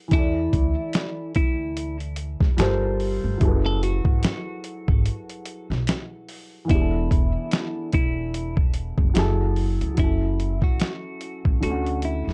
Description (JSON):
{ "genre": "lo-fi hip hop", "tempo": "73 BPM", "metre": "4/4", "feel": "swing 57% on 16ths", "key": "F# minor", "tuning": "A4 = 436 Hz", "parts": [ { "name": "dark upright piano", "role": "accompaniment", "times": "0.0-12.3 s", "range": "D3 to D5", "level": "-31 LUFS", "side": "equal", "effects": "none" }, { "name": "semi-hollow electric guitar", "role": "melody", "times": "0.1-12.3 s", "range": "E4 to A4", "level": "-32 LUFS", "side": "equal", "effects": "phaser, tape echo" }, { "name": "upright bass", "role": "bass", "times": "0.1-12.3 s", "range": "E1 to E2", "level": "-28 LUFS", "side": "equal", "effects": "none" }, { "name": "dusty soul sampler-style drum kit", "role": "drums", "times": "0.1-12.3 s", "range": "hi-hat, kick drum, snare drum", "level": "-24 LUFS", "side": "equal", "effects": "none" } ], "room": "little or no reverb", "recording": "dark, warm production", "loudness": "-23 LUFS", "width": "mono", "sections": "0.0-10.0 A section; 10.0-12.3 B section", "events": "none", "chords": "0.1 E7sus4; 2.6 Gm11; 3.4 F#m11; 6.7 E7sus4; 9.2 F#m9; 10.0 F#m7; 11.6 Dmaj7", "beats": "| 0.12 0.94 1.76 2.58 | 3.40 4.23 5.05 5.87 | 6.69 7.51 8.34 9.16 | 9.98 10.80 11.62" }